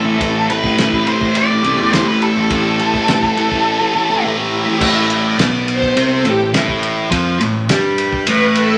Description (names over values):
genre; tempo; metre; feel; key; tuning
psychedelic rock; 104 BPM; 4/4; straight; A minor; A4 = 440 Hz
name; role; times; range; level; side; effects
octave-fuzz lead guitar; melody; 0.0-4.2 s; A4 to D5; -20 LUFS; equal; distortion
string machine, violins; sustained chords; 0.0-8.8 s; C4 to E5; -23 LUFS; equal; ensemble chorus
thick fuzz guitar; riff; 0.0-8.8 s; A2 to G4; -18 LUFS; equal; distortion, phaser
modern bright picked electric bass; bass; 0.2-8.8 s; A1 to A2; -26 LUFS; equal; none
cloth-damped thuddy drum kit; drums; 0.2-8.7 s; crash cymbal, kick drum, ride cymbal, snare drum; -23 LUFS; equal; none
room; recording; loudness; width
wet club reverb, RT60 0.9 s; none; -15 LUFS; mono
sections
0.0-4.8 A section; 4.8-8.8 B section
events
string machine solo 4.8-8.8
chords
0.0 Am